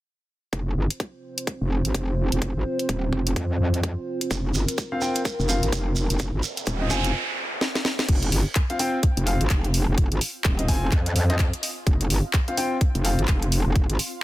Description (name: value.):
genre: bass house.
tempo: 127 BPM.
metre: 4/4.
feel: swing 60% on 16ths.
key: unclear.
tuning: A4 = 441 Hz.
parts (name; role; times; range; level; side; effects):
dark analog pad; sustained chords; 0.5-7.1 s; C4 to C5; -30 LUFS; right 1 dB; chorus, sidechain pumping.
metallic wobble bass; bass; 0.5-14.0 s; Eb1 to F2; -23 LUFS; equal; chorus, sidechain pumping.
electronic kick drum; drums; 0.5-13.9 s; none; -22 LUFS; equal; high-pass filter on kick.
garage drum kit; drums; 0.5-14.1 s; crash cymbal, handclaps, hi-hat, snare drum; -28 LUFS; equal; none.
shekere; percussion; 4.3-7.1 s; none; -32 LUFS; right 5 dB; none.
warm grand piano; stabs; 4.9-13.2 s; C4 to Ab5; -29 LUFS; left 1 dB; sidechain pumping, tape echo.
noise sweep; sound effects; 6.4-8.1 s; none; -30 LUFS; right 3 dB; none.
granular cloud pad; texture; 10.4-14.2 s; C4 to C6; -43 LUFS; equal; none.
room: little or no reverb.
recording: dense, heavily limited modern master.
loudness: -21 LUFS.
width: side -16 dB against mid.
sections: 0.5-8.1 A section; 8.1-14.2 B section.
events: noise sweep 6.4-8.1; drum fill 7.6-8.1.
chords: 0.5 F5.